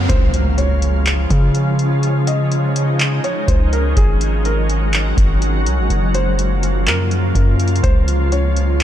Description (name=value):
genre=hip hop, atmospheric cloud-rap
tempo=124 BPM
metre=4/4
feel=half-time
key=Db major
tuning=A4 = 440 Hz
part: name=felt-muted upright piano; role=melody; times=0.0-8.8 s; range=Ab4 to Eb5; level=-26 LUFS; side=equal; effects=ping-pong delay
part: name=shimmering ambient pad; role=sustained chords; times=0.0-8.8 s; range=Db3 to Gb4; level=-21 LUFS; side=equal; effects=chorus, built-in reverb, sidechain pumping
part: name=long sustained 808-style bass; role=bass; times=0.0-8.8 s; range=Gb1 to Db3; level=-16 LUFS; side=equal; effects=none
part: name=riser and impact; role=sound effects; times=0.0-2.0 s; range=none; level=-26 LUFS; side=equal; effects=none
part: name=wind-like tuned noise texture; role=texture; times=0.0-0.1, 7.8-8.8 s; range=none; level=barely audible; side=none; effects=none
part: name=booming analog drum machine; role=drums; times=0.1-8.8 s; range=handclaps, hi-hat, kick drum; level=-17 LUFS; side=equal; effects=none
room=little or no reverb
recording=none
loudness=-14 LUFS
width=side -11 dB against mid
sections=0.1-8.8 A section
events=impact 0.1-2.0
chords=0.1 Db; 4.0 Ab7(no3); 5.9 Gbmaj7; 7.8 Dbmaj7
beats=| 0.10 0.58 1.06 1.55 | 2.03 2.52 3.00 3.48 | 3.97 4.45 4.93 5.42 | 5.90 6.39 6.87 7.35 | 7.84 8.32 8.80